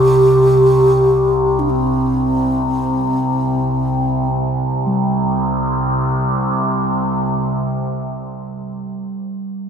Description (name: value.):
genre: world meditative, free-time meditation music.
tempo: free time.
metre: none.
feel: none.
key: unclear.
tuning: A4 = 440 Hz.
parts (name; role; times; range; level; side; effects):
breathy mellow bass flute; melody; 0.0-4.3 s; C4 to G4; -15 LUFS; equal; analog delay.
overtone-sweeping drone; drone; 0.0-8.3 s; C2 to C3; -17 LUFS; equal; chorus, built-in reverb.
quartz singing bowl; texture; 4.9-8.3 s; G3; -23 LUFS; right 3 dB; none.
room: wet plate reverb, RT60 2.6 s.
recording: dreamy mix soaked in reverb.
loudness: -14 LUFS.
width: side -7 dB against mid.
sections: 0.0-4.9 A section; 4.9-9.2 B section.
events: none.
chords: none.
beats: free time.